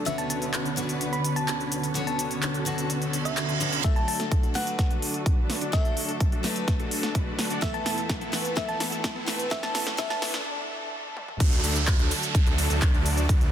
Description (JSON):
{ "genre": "EDM, festival progressive house", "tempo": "127 BPM", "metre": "4/4", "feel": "straight", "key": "D major", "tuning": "A4 = 440 Hz", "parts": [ { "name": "picked steel-string acoustic guitar", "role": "accompaniment", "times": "0.0-10.4 s", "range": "D3 to C#5", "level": "-34 LUFS", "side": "left 3 dB", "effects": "sidechain pumping" }, { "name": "rich studio string section", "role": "sustained chords", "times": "0.0-13.5 s", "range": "E2 to B4", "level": "-36 LUFS", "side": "right 1 dB", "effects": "vintage 12-bit sampler grit, sidechain pumping" }, { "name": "dense compressed supersaw", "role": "riff", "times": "0.0-13.5 s", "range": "D3 to D5", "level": "-33 LUFS", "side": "equal", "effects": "sidechain pumping, low-pass filter, dub echo" }, { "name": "thumb-piano-like synth pluck", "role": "melody", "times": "0.1-10.3 s", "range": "E5 to B5", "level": "-33 LUFS", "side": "equal", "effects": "chorus, dub echo" }, { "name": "big-room dance drum kit", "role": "drums", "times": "0.1-13.5 s", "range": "crash cymbal, handclaps, hi-hat, ride cymbal, shaker, snare drum, toms", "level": "-31 LUFS", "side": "equal", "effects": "soft clipping on snare" }, { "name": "reverse cymbal, riser and downlifter", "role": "sound effects", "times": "3.1-13.5 s", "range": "none", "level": "-34 LUFS", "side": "right 4 dB", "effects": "none" }, { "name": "electronic kick drum", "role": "drums", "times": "3.8-13.4 s", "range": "none", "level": "-24 LUFS", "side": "equal", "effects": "none" }, { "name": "wide detuned saw bass", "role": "bass", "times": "11.4-13.5 s", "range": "D2", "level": "-26 LUFS", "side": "equal", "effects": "chorus, tube saturation, sidechain pumping" } ], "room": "light reverb", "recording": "dense, heavily limited modern master, high-pass filter", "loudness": "-24 LUFS", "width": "side -10 dB against mid", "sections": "0.0-3.8 A section; 3.8-11.4 B section; 11.4-13.5 C section", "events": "reverse cymbal 3.1-3.8; build-up 3.8-11.4; drum fill 3.8-10.5, 11.2; filter sweep on supersaw synth 3.8-11.4; filter sweep 3.8-11.4; break 10.5-11.4; drop 11.4-13.5", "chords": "0.1 Bmadd9/D; 3.8 D; 7.6 Asus2/E; 11.4 D" }